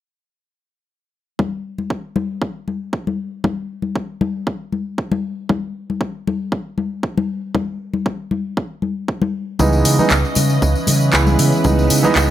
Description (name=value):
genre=nu-disco, nu disco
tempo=117 BPM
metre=4/4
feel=swing 53% on 16ths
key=C# minor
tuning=A4 = 440 Hz
part: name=electronic kick drum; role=drums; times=1.4-12.3 s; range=none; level=-22 LUFS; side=right 1 dB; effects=overdrive, high-pass filter on kick, small room reverb
part: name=congas and tambourine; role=percussion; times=1.4-12.3 s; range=none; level=-22 LUFS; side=left 4 dB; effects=none
part: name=dark grand piano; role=accompaniment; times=9.6-12.3 s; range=E3 to E4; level=-18 LUFS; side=right 3 dB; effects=sidechain pumping, dub echo
part: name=string machine, full ensemble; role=sustained chords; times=9.6-12.3 s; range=E3 to E6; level=-21 LUFS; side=right 1 dB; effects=ensemble chorus, vintage 12-bit sampler grit, sidechain pumping
part: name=picked electric bass with an envelope filter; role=bass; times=9.6-12.3 s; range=C#2 to C#3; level=-16 LUFS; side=right 1 dB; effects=none
part: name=house drum kit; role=drums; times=9.9-12.3 s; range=handclaps, hi-hat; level=-20 LUFS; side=equal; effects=overdrive, small room reverb
room=digital ambience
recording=none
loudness=-17 LUFS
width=side -12 dB against mid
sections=1.4-12.3 A section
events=none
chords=1.4 N.C.; 9.6 C#m9